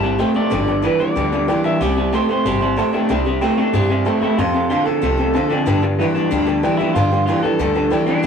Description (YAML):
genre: rockabilly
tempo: 187 BPM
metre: 4/4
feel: straight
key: C major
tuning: A4 = 440 Hz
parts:
  - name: electric guitar through a small old amp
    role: melody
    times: 0.0-8.3 s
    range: B3 to A5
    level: -22 LUFS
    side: right 1 dB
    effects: tremolo
  - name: dark upright piano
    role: accompaniment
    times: 0.0-8.3 s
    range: B4 to A5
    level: -26 LUFS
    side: equal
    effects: none
  - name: picked steel-string acoustic guitar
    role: accompaniment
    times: 0.0-8.3 s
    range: G2 to A4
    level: -26 LUFS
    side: left 4 dB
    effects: none
  - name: electric guitar through a small old amp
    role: riff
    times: 0.0-8.3 s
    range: F2 to A3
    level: -18 LUFS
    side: equal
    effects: warbly pitch drift
  - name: upright bass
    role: bass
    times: 0.0-8.3 s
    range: G1 to G2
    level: -23 LUFS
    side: equal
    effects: none
room: moderate small room reverb, RT60 0.5 s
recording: rough rehearsal-room recording, cassette tape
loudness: -15 LUFS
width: side -6 dB against mid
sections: 0.0-3.1 A section; 3.1-8.3 A section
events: none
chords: 0.0 C; 0.5 G7; 1.8 C; 4.4 F; 5.7 G7